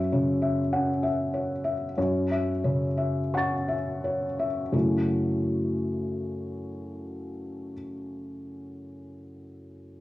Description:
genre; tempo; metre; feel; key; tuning
neoclassical minimalist piano; 42-52 BPM; 4/4; rubato; F# minor; A4 = 441 Hz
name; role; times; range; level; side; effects
felt-muted upright piano; solo; 0.0-10.0 s; F#2 to A6; -26 LUFS; left 1 dB; cassette tape
room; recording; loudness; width
light reverb, small room ambience; home recording on cassette, studio reverb; -25 LUFS; side -16 dB against mid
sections
0.0-4.7 A section; 4.7-10.0 B section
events
slowing down 0.0-4.7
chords
0.0 C#madd11/F#; 2.0 F#m7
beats
0.70 1.96 3.32 | 4.73 6.08 7.41 8.76

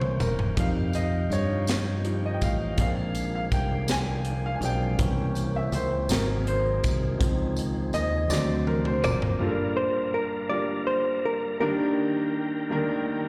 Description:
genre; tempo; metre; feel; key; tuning
slow gospel; 54 BPM (dotted quarters); 6/8; straight; F minor, G minor from 9.4 s; A4 = 438 Hz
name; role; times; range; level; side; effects
warm upright piano; accompaniment; 0.0-13.3 s; G2 to Ab5; -31 LUFS; equal; slapback echo
mellow French horn section; sustained chords; 0.0-9.4 s; F#3 to E5; -42 LUFS; equal; none
tonewheel organ; sustained chords; 0.0-13.3 s; C3 to Bb5; -40 LUFS; equal; fast rotary speaker, chorus vibrato
fingered electric bass; bass; 0.0-9.4 s; E1 to G2; -30 LUFS; equal; none
crisp fusion drum kit; drums; 0.0-9.4 s; hi-hat, kick drum, snare drum, toms; -31 LUFS; equal; none
tambourine; percussion; 0.2-9.4 s; none; -42 LUFS; equal; none
hollow-body jazz guitar; melody; 9.0-13.3 s; D4 to D5; -30 LUFS; equal; none
room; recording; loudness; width
light reverb, small room ambience; live gig heard through the venue's PA, recital hall reverb; -26 LUFS; mono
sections
0.0-9.4 A section; 9.4-13.3 B section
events
drum fill 0.0-0.6, 8.3-9.4; upright piano solo 0.0-9.4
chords
0.0 C7b9; 0.6 Fsus2; 2.8 Bb7; 5.0 C7b9; 6.1 Ab9; 7.2 Dbmaj9; 8.3 D7; 9.4 Gm7; 11.6 Ebmaj7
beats
| 0.57 1.68 | 2.78 3.89 | 4.99 6.10 | 7.20 8.30 | 9.41 10.51 | 11.61 12.71

